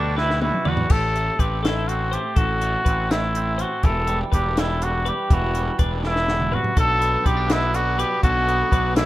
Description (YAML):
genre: math rock and midwest emo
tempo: 82 BPM (dotted quarters)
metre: 6/8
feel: straight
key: unclear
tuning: A4 = 440 Hz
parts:
  - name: clear trumpet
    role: melody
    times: 0.0-9.1 s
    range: D4 to A4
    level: -23 LUFS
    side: equal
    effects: none
  - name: twangy electric guitar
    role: accompaniment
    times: 0.0-9.1 s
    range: A2 to B4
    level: -30 LUFS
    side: right 6 dB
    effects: none
  - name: twelve-string electric guitar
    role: arpeggios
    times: 0.0-9.1 s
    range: E4 to D5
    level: -32 LUFS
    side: left 9 dB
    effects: none
  - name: fuzz fingered electric bass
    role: bass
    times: 0.0-9.1 s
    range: E1 to E2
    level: -25 LUFS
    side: equal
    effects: overdrive
  - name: compact cocktail drum kit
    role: drums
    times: 0.2-9.1 s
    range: crash cymbal, hi-hat, kick drum, snare drum, toms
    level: -22 LUFS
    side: equal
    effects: none
  - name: biting overdriven guitar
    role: riff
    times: 6.8-9.1 s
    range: B2 to F#4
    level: -32 LUFS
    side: right 2 dB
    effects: none
room: small room ambience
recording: rough home demo mix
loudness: -18 LUFS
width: side -15 dB against mid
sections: 0.9-9.1 A section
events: drum fill 0.2-0.9, 6.0-6.8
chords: 0.0 Gmaj7; 0.9 Am7; 3.8 Em7; 6.8 Bm7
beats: 0.17 | 0.90 1.64 | 2.37 3.10 | 3.84 4.57 | 5.30 6.04 | 6.77 7.50 | 8.24 8.97